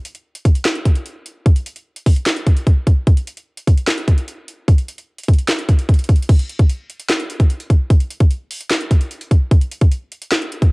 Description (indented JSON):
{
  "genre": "hip hop",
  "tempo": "149 BPM",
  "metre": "4/4",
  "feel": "half-time",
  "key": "none",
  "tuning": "none",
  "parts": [
    { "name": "trap drum kit", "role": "drums", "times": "0.1-10.7 s", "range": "crash cymbal, handclaps, hi-hat, kick drum, snare drum", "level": "-13 LUFS", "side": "equal", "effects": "cassette tape" }
  ],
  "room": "little or no reverb",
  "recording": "home recording on cassette",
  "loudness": "-14 LUFS",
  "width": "side -30 dB against mid",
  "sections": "0.0-6.3 A section; 6.3-10.7 B section",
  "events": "none",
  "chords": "none"
}